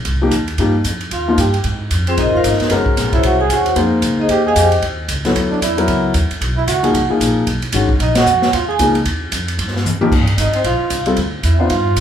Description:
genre	jazz, small-group swing and bop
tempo	226 BPM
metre	4/4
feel	swing 60% on 8ths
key	unclear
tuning	A4 = 440 Hz
part	upright bass	bass	0.0-12.0 s	F1 to Ab2	-19 LUFS	equal	none
part	open jazz drum kit	drums	0.0-12.0 s	crash cymbal, hi-hat, kick drum, ride cymbal, snare drum, toms	-20 LUFS	equal	none
part	warm grand piano	accompaniment	0.2-11.7 s	D#3 to C5	-17 LUFS	left 3 dB	none
part	vibraphone with medium hard mallets	melody	1.1-12.0 s	C4 to Ab5	-18 LUFS	equal	none
part	breathy trumpet	second line	1.1-12.0 s	C4 to Ab4	-22 LUFS	right 6 dB	none
room	moderate large studio reverb, RT60 0.9 s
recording	band playing live in one room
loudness	-13 LUFS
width	side -9 dB against mid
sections	0.0-1.6 A section; 1.6-10.1 B section; 10.1-12.0 A section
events	band accent 8.1; drum fill 9.8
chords	0.0 Eb69; 1.1 Eb; 1.6 Ab69; 2.7 Gb7#11; 3.8 Fm9; 4.8 Ebm7b5; 5.3 Dadd9; 5.9 Dbm11; 6.9 Bb9sus4; 7.5 Badd9; 8.0 Bbm7; 9.1 Ebadd9; 10.1 Gm11; 11.2 Dmadd9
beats	0.05 0.32 | 0.58 0.85 1.11 1.38 | 1.64 1.91 2.17 2.44 | 2.70 2.96 3.23 3.49 | 3.76 4.02 4.29 4.55 | 4.82 5.08 5.35 5.61 | 5.88 6.14 6.41 6.67 | 6.94 7.20 7.47 7.73 | 8.00 8.26 8.53 8.79 | 9.05 9.32 9.58 9.85 | 10.11 10.38 10.64 10.91 | 11.17 11.44 11.70 11.97

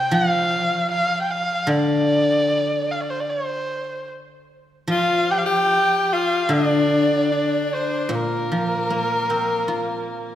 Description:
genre	chinese traditional, Chinese chamber ensemble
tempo	75 BPM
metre	4/4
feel	rubato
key	unclear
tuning	A4 = 440 Hz
part	dark erhu	melody	0.0-10.3 s	Bb4 to G5	-21 LUFS	right 1 dB	none
part	guzheng	accompaniment	0.0-10.3 s	Bb2 to F4	-23 LUFS	left 1 dB	none
part	edgy tenor saxophone	second line	4.9-10.3 s	Bb3 to G4	-24 LUFS	left 4 dB	none
room	moderate concert hall reverb, RT60 2.1 s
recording	none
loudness	-18 LUFS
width	side -11 dB against mid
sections	0.0-10.3 A section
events	none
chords	none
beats	0.13 0.91 | 1.69 2.48 3.28 4.08 | 4.89 5.70 6.51 7.30 | 8.10 8.89 9.67

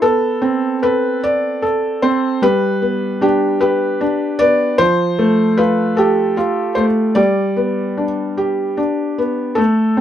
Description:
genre	children's music, lullaby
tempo	50 BPM (dotted quarters)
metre	6/8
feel	straight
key	unclear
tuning	A4 = 440 Hz
part	felt-muted upright piano	solo	0.0-10.0 s	F3 to D5	-14 LUFS	equal	none
room	moderate small room reverb, RT60 0.5 s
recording	minimal, uncompressed stereo recording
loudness	-14 LUFS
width	side -10 dB against mid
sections	0.0-10.0 A section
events	none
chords	0.0 Amadd9; 2.4 G; 4.8 Fadd9; 7.2 G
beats	| 0.03 1.23 | 2.43 3.62 | 4.80 5.98 | 7.17 8.37 | 9.58

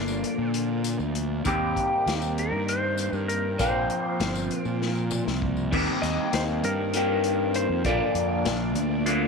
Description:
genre	psychedelic rock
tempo	197 BPM (eighths)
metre	7/8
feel	straight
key	unclear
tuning	A4 = 440 Hz
part	clean lap steel guitar	melody	0.0-9.3 s	G4 to Eb5	-32 LUFS	equal	tape echo
part	string machine, violins	sustained chords	0.0-9.3 s	F3 to F4	-36 LUFS	right 12 dB	ensemble chorus
part	electric guitar through a small old amp	riff	0.0-9.3 s	Bb2 to G4	-26 LUFS	left 2 dB	phaser
part	fuzz fingered electric bass	bass	0.0-9.3 s	G1 to Bb2	-30 LUFS	right 1 dB	overdrive
part	tambourine	percussion	0.1-5.6 s	none	-40 LUFS	left 13 dB	none
part	vintage drum kit	drums	0.2-9.2 s	crash cymbal, hi-hat, kick drum, snare drum, toms	-32 LUFS	left 4 dB	none
room	light reverb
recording	1960s-style stereo with parts hard left and right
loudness	-23 LUFS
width	side -4 dB against mid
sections	0.0-5.7 A section; 5.7-9.3 B section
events	drum fill 4.8-5.7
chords	0.0 Bb; 1.5 Eb6; 3.6 Bbsus2; 5.7 Eb6; 7.9 Bb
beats	0.24 0.54 0.85 1.15 | 1.46 1.76 2.07 2.37 2.68 2.98 3.29 | 3.59 3.90 4.20 4.50 4.81 5.11 5.42 | 5.72 6.03 6.33 6.64 6.94 7.24 7.55 | 7.85 8.15 8.46 8.76 9.06

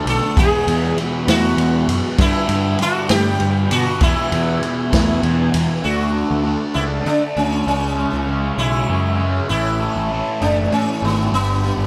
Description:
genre	psychedelic rock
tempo	66 BPM (dotted quarters)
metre	6/8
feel	straight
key	unclear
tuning	A4 = 440 Hz
part	sitar	melody	0.0-11.9 s	B3 to A4	-24 LUFS	equal	none
part	ensemble organ-string	sustained chords	0.0-11.9 s	A4 to C#6	-35 LUFS	equal	none
part	fuzz guitar	riff	0.0-11.9 s	E2 to D4	-24 LUFS	equal	distortion, phaser
part	fuzz picked electric bass	bass	0.1-11.9 s	F#1 to D3	-23 LUFS	equal	overdrive
part	vintage drum kit	drums	0.1-5.7 s	kick drum, ride cymbal, snare drum	-24 LUFS	equal	none
room	moderate large studio reverb, RT60 1.0 s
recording	band playing live in one room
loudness	-18 LUFS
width	mono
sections	0.0-5.8 A section; 5.8-11.9 B section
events	none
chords	0.4 Esus2; 2.2 G; 4.0 Eadd9; 5.8 Dadd9; 7.7 C#m; 9.5 A; 11.3 Gmaj7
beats	| 0.37 1.28 | 2.19 3.10 | 4.01 4.92 | 5.83 6.75 | 7.66 8.58 | 9.49 10.41 | 11.32

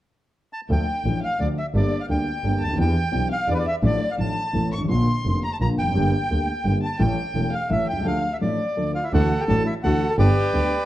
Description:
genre	tango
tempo	172 BPM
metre	3/4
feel	rubato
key	D minor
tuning	A4 = 445 Hz
part	bandoneon	melody	0.5-10.9 s	A4 to C#6	-27 LUFS	right 1 dB	plate reverb
part	dark violin	second line	0.7-10.8 s	E4 to C#6	-30 LUFS	left 2 dB	none
part	warm concert grand piano	accompaniment	0.7-10.7 s	E1 to A4	-24 LUFS	equal	none
part	warm double bass	bass	0.7-10.7 s	E1 to E2	-23 LUFS	equal	none
part	rich chamber string section	stabs	9.1-10.7 s	B3 to G4	-35 LUFS	right 3 dB	none
room	moderate large studio reverb, RT60 0.9 s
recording	dark, warm production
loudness	-20 LUFS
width	side -14 dB against mid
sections	0.7-9.1 A section; 9.1-10.9 B section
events	none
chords	0.0 N.C.; 0.7 Dm; 1.7 Gmadd9; 2.8 Em7; 3.8 Dm/A; 4.5 A; 4.9 Bb; 6.0 Gm; 7.0 A; 8.1 Dm; 9.1 Dadd9; 10.2 G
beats	0.00 0.35 | 0.70 1.05 1.40 | 1.75 2.09 2.44 | 2.79 3.13 3.48 | 3.83 4.18 4.54 | 4.90 5.25 5.61 | 5.96 6.31 6.65 | 7.00 7.35 7.70 | 8.05 8.41 8.77 | 9.13 9.48 9.84 | 10.19 10.53

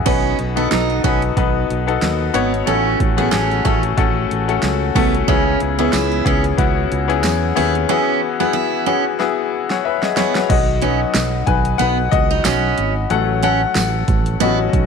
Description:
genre	piano-driven pop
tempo	92 BPM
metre	4/4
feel	swing 56% on 16ths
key	unclear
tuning	A4 = 440 Hz
part	bright grand piano	accompaniment	0.0-14.9 s	A2 to G#5	-18 LUFS	left 10 dB	none
part	picked steel-string acoustic guitar	riff	0.1-14.6 s	B3 to E4	-21 LUFS	right 15 dB	none
part	fingered electric bass	bass	0.1-14.9 s	G#1 to E2	-21 LUFS	right 2 dB	none
part	deep house drum kit	drums	0.1-14.9 s	crash cymbal, hi-hat, kick drum, snare drum	-20 LUFS	right 2 dB	none
part	tambourine	percussion	5.9-13.9 s	none	-29 LUFS	right 15 dB	none
room	light reverb, studio ambience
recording	1960s-style stereo with parts hard left and right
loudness	-15 LUFS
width	side -6 dB against mid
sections	0.1-10.5 A section; 10.5-14.9 B section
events	drum fill 9.2-10.5; grand piano solo 10.5-14.9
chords	0.1 B; 2.7 F#m/A; 5.3 C#m7; 7.9 Eadd9; 10.5 B; 13.1 F#m/A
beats	| 0.07 0.72 1.37 2.02 | 2.67 3.33 3.98 4.63 | 5.28 5.93 6.59 7.24 | 7.89 8.54 9.19 9.85 | 10.50 11.15 11.80 12.45 | 13.11 13.76 14.41

